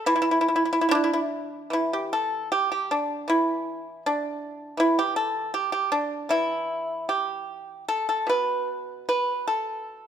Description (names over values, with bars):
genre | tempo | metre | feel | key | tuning
chinese traditional, Chinese solo plucked strings | 72-82 BPM | 2/4 | rubato | E yu mode | A4 = 441 Hz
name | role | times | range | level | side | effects
pipa | solo | 0.0-10.1 s | B2 to B4 | -23 LUFS | right 1 dB | none
room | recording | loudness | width
light reverb | none | -23 LUFS | side -9 dB against mid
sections
0.0-1.7 A section; 1.7-10.1 B section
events
none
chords
none